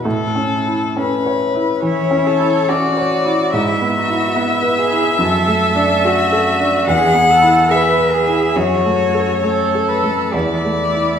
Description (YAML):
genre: classical, slow romantic movement for piano trio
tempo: 70 BPM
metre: 4/4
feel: uneven beats, rubato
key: A major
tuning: A4 = 436 Hz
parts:
  - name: rich violin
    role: melody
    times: 0.0-11.2 s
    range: A4 to F#5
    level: -16 LUFS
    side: left 4 dB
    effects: none
  - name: warm concert grand piano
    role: accompaniment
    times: 0.0-11.2 s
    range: E2 to C#5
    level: -18 LUFS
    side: right 1 dB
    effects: none
  - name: rich cello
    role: second line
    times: 1.8-11.2 s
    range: E4 to B4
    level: -20 LUFS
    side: right 4 dB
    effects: none
room: wet recital hall reverb, RT60 1.4 s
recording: heard from further back in the room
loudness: -13 LUFS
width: side -8 dB against mid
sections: 0.0-11.2 A section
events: none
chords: 0.0 A; 3.5 E/G#; 5.2 D/F#; 6.9 E; 8.6 F#m; 10.3 A5/E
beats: | 0.05 0.97 1.84 2.69 | 3.54 4.37 5.20 6.05 | 6.87 7.70 8.56 9.44 | 10.34